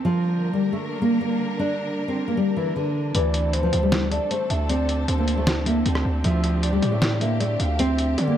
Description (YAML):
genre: hip hop, trap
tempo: 155 BPM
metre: 4/4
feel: half-time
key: D minor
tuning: A4 = 440 Hz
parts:
  - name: nylon-string guitar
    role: melody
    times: 0.0-8.4 s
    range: D3 to D4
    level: -23 LUFS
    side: equal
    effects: none
  - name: clear symphonic string section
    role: sustained chords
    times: 0.1-8.4 s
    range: D3 to Bb4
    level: -31 LUFS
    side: equal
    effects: none
  - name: soft octave-layered synth lead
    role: second line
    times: 3.1-8.4 s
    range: C5 to F5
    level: -29 LUFS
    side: left 1 dB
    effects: chorus, phaser, digital delay
  - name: distorted 808-style bass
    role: bass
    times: 3.1-8.4 s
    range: D2 to D3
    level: -24 LUFS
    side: equal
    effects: distortion
  - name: lo-fi sampler-style drum kit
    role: drums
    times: 3.1-8.3 s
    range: hi-hat, rim click, snare drum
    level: -26 LUFS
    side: equal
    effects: none
room: light reverb, digital ambience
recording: dark, warm production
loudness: -20 LUFS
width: side -10 dB against mid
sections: 0.0-8.4 A section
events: none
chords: 0.1 Gm/D; 3.1 Dm7